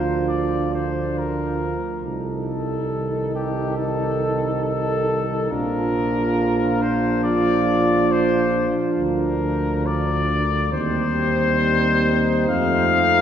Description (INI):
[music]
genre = classical, brass quintet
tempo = 69 BPM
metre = 4/4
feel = straight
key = Bb major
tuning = A4 = 440 Hz
[part]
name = mellow trumpet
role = melody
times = 0.0-13.2 s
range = G4 to F5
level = -23 LUFS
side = left 4 dB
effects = none
[part]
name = warm flugelhorn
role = second line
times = 0.0-13.2 s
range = Eb4 to A4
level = -28 LUFS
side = right 5 dB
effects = none
[part]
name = clear French horn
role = accompaniment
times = 0.0-13.2 s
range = C4 to Eb4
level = -27 LUFS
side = left 1 dB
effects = none
[part]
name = clear trombone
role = accompaniment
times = 0.0-13.2 s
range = Eb3 to A3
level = -27 LUFS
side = right 3 dB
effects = none
[part]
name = mellow tuba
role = bass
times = 0.0-13.2 s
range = Bb1 to F2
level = -24 LUFS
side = right 1 dB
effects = none
[sound]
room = wet church reverb, RT60 3.7 s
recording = recorded in a church or concert hall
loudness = -19 LUFS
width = side -9 dB against mid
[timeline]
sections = 0.0-13.2 A section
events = none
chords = 0.0 Bb/D; 2.0 Adim/C; 5.5 Bb; 9.0 Bb/D; 10.7 Cm/Eb; 12.5 F7